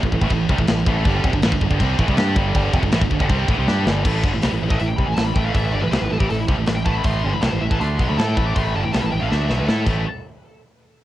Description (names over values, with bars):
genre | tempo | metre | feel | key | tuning
heavy metal | 160 BPM | 4/4 | straight | A minor | A4 = 438 Hz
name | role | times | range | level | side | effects
heavy high-gain guitar | riff | 0.0-10.0 s | F2 to A4 | -26 LUFS | left 8 dB | distortion
heavy high-gain guitar | riff | 0.0-10.0 s | F2 to A4 | -25 LUFS | right 7 dB | distortion
growling fingered electric bass | bass | 0.0-10.0 s | F1 to A2 | -22 LUFS | equal | overdrive
tight metal drum kit | drums | 0.0-9.9 s | crash cymbal, hi-hat, kick drum, snare drum | -22 LUFS | equal | cassette tape
high-gain lead guitar | melody | 4.7-9.8 s | E4 to D6 | -27 LUFS | left 1 dB | distortion, cassette tape
room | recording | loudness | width
little or no reverb | home recording on cassette | -17 LUFS | side -14 dB against mid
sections
0.0-4.0 A section; 4.0-10.0 B section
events
drum fill 3.7-4.0, 9.3-10.0; lead electric guitar solo 4.0-10.0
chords
0.0 Am; 1.1 G5; 4.0 Am; 9.9 A5; 10.0 N.C.